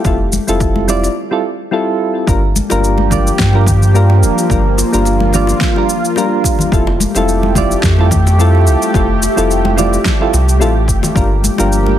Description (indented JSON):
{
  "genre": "sunset chillout",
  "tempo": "108 BPM",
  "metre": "4/4",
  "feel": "swing 54% on 16ths",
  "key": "G dorian",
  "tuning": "A4 = 437 Hz",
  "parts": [
    { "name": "soft electric-piano-like synth keys", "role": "accompaniment", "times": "0.0-12.0 s", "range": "G3 to D5", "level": "-16 LUFS", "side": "right 1 dB", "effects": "chorus, auto-pan, digital delay" },
    { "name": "lush unison pad", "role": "sustained chords", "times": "0.0-12.0 s", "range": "F3 to G4", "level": "-19 LUFS", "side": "equal", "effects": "chorus" },
    { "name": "warm sub bass", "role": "bass", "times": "0.0-12.0 s", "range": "D1 to G2", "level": "-13 LUFS", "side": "equal", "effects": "none" },
    { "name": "electronic kick drum", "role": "drums", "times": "0.0-11.3 s", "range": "none", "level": "-17 LUFS", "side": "equal", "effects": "overdrive" },
    { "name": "electronic shaker and snare drum", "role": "drums", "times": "0.0-11.8 s", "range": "none", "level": "-20 LUFS", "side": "equal", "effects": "overdrive" },
    { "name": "congas and bongos", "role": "percussion", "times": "0.3-12.0 s", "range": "none", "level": "-22 LUFS", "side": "left 4 dB", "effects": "none" }
  ],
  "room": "light reverb, digital ambience",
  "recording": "dense, heavily limited modern master",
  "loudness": "-10 LUFS",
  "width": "side -11 dB against mid",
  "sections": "0.0-2.3 A section; 2.3-12.0 B section",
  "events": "break 1.2-2.3",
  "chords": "0.0 Fmaj9; 2.3 Gm7; 6.7 Fmaj9; 11.2 Gm7"
}